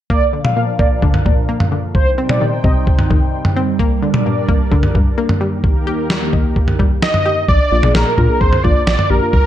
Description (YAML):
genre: synth-pop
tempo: 130 BPM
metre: 4/4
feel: straight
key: Bb major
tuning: A4 = 440 Hz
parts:
  - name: mellow synth brass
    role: second line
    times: 0.1-2.7 s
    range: C5 to F5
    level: -20 LUFS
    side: right 2 dB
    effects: chorus, ping-pong delay
  - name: lush unison pad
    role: sustained chords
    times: 0.1-7.5 s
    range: Eb2 to G5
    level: -21 LUFS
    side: right 2 dB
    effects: chorus, phaser
  - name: analog pluck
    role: arpeggios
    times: 0.1-7.4 s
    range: G2 to G4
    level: -22 LUFS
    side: left 3 dB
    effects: chorus, ping-pong delay
  - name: dusty soul sampler-style drum kit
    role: drums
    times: 0.1-9.4 s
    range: kick drum, snare drum, toms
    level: -15 LUFS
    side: equal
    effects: none
  - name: wide unison lead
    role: melody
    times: 7.0-9.5 s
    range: Bb4 to Eb5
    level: -16 LUFS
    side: right 1 dB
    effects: none
  - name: round analog bass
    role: bass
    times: 7.5-9.4 s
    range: Bb1 to Bb2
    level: -16 LUFS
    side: equal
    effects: none
  - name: muted felt-like synth keys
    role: accompaniment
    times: 7.7-9.3 s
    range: Bb3 to Ab4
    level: -20 LUFS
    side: left 4 dB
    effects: chorus
room: light reverb, digital ambience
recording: dark, warm production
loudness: -12 LUFS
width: side -12 dB against mid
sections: 0.1-7.5 A section; 7.5-9.5 B section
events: none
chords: 0.1 Bb; 1.9 Cm; 3.8 Gm; 5.4 Eb; 7.5 Bb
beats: | 0.10 0.56 1.02 1.49 | 1.95 2.41 2.87 3.33 | 3.79 4.26 4.72 5.18 | 5.64 6.10 6.56 7.03 | 7.49 7.95 8.41 8.87 | 9.33